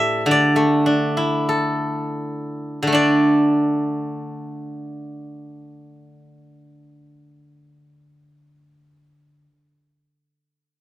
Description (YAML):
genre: chinese traditional, Chinese solo plucked strings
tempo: 38-56 BPM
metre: 2/4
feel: rubato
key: D zhi mode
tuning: A4 = 441 Hz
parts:
  - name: steel-string zither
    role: solo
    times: 0.0-9.5 s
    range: A2 to E5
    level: -18 LUFS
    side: equal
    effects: none
room: little or no reverb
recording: recorded outdoors, with no room sound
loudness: -17 LUFS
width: side -14 dB against mid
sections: 0.0-2.9 A section; 2.9-9.0 B section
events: slowing down 0.0-2.9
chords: none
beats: | 0.28 1.49 | 2.95 4.51 | 6.00 7.49